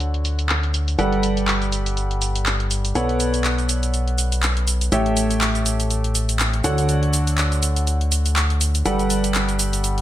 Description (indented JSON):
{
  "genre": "piano house",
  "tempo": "122 BPM",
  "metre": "4/4",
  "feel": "swing 56% on 16ths",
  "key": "unclear",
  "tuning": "A4 = 438 Hz",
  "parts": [
    { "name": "clear grand piano", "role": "riff", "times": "0.0-10.0 s", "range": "D3 to G5", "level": "-23 LUFS", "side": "equal", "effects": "low-pass filter, tape echo" },
    { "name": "fat analog bass", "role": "bass", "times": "0.0-10.0 s", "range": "G1 to D2", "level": "-21 LUFS", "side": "equal", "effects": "none" },
    { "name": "house drum kit", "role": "drums", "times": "0.0-10.0 s", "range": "cabasa, handclaps, hi-hat", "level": "-24 LUFS", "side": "equal", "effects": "low-pass filter on hats, low-pass filter on perc, low-pass filter on snare" }
  ],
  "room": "light reverb, digital ambience",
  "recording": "none",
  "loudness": "-18 LUFS",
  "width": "side -13 dB against mid",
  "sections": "0.0-10.0 A section",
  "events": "none",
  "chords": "0.0 Dmaj7; 1.0 Gmaj9; 3.0 Bm9; 4.9 A7; 6.6 Dmaj7; 8.9 Gmaj9"
}